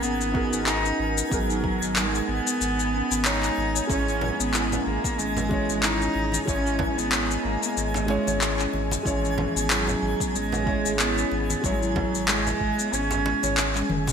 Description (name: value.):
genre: organic downtempo.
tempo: 93 BPM.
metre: 4/4.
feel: swing 56% on 16ths.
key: C# dorian.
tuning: A4 = 445 Hz.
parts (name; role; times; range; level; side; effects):
warm cello; melody; 0.0-13.9 s; E3 to D#4; -28 LUFS; right 1 dB; ping-pong delay, shimmer reverb.
felt-muted upright piano; accompaniment; 0.0-14.1 s; B2 to C#5; -32 LUFS; right 1 dB; sidechain pumping, digital delay, shimmer reverb.
warbly tape-like pad; sustained chords; 0.0-14.1 s; G#3 to G#5; -34 LUFS; right 1 dB; chorus, built-in reverb, sidechain pumping, shimmer reverb.
marimba with soft mallets; arpeggios; 0.0-14.1 s; G#3 to C#5; -32 LUFS; equal; digital delay, shimmer reverb.
warm sub bass; bass; 0.0-14.1 s; F#1 to G#1; -30 LUFS; equal; sidechain pumping.
afro-pop drum kit; drums; 0.0-14.1 s; handclaps, shaker, toms; -27 LUFS; left 2 dB; overdrive, gated reverb.
twinkling granular texture; texture; 0.0-14.1 s; G#5; -35 LUFS; right 2 dB; built-in reverb, shimmer reverb.
electronic kick drum; drums; 0.3-12.7 s; none; -31 LUFS; equal; overdrive.
congas; percussion; 4.2-14.1 s; none; -35 LUFS; right 4 dB; none.
room: moderate lush hall reverb, RT60 2.0 s, small room ambience.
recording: bright 1980s-style digital production.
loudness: -22 LUFS.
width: side -7 dB against mid.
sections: 0.0-14.1 A section.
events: drum fill 13.7-14.1.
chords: 0.0 G#m7; 3.9 C#m/G#.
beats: 0.03 0.67 | 1.31 1.96 2.60 3.25 | 3.90 4.54 5.19 5.83 | 6.48 7.12 7.77 8.41 | 9.06 9.70 10.35 10.99 | 11.64 12.28 12.93 13.57.